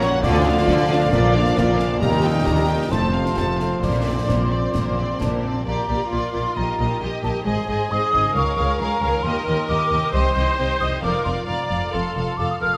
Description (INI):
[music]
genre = cinematic, heroic adventure film score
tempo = 134 BPM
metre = 4/4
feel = straight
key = Bb major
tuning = A4 = 443 Hz
[part]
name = warm symphonic violin section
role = melody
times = 0.0-12.8 s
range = C5 to Bb5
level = -32 LUFS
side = equal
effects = none
[part]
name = dark symphonic violin section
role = second line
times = 0.0-12.8 s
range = F4 to D5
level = -34 LUFS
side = equal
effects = none
[part]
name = mellow cor anglais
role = second line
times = 0.0-5.4 s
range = Bb4 to D5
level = -32 LUFS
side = equal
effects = none
[part]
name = mellow hollow silver concert flute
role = second line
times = 0.0-12.8 s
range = F5 to F6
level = -28 LUFS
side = equal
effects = none
[part]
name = rich symphonic viola section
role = accompaniment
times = 0.0-12.7 s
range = A3 to D5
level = -30 LUFS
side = equal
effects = none
[part]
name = dark French horn section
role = sustained chords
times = 0.0-5.4 s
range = A3 to F4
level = -30 LUFS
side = equal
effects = none
[part]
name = mellow trombone section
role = sustained chords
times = 0.0-5.4 s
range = Bb2 to G3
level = -31 LUFS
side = equal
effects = none
[part]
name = concert harp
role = arpeggios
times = 0.0-12.8 s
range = F2 to D5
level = -36 LUFS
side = equal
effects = none
[part]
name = dark trumpet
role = stabs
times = 0.0-5.4 s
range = C5 to Eb5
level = -31 LUFS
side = equal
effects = none
[part]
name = clear symphonic double bass section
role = bass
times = 0.0-12.7 s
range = F1 to Eb2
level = -28 LUFS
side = equal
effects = none
[part]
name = rich symphonic cello section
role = bass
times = 0.0-12.7 s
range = C2 to D3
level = -29 LUFS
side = equal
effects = none
[part]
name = concert snare drum and concert bass drum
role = drums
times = 0.0-5.4 s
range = none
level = -29 LUFS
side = equal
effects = none
[sound]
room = wet scoring stage reverb, RT60 1.9 s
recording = none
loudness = -21 LUFS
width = mono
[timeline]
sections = 0.0-5.7 A section; 5.7-12.8 B section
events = none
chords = 0.2 Dm; 1.1 Bb; 2.0 Eb; 2.9 F; 3.8 Bbadd9; 5.7 Bb; 6.6 Eb/Bb; 7.5 Ab; 8.4 Db; 9.2 Eb; 10.1 Cm; 11.0 Bb/F; 11.9 F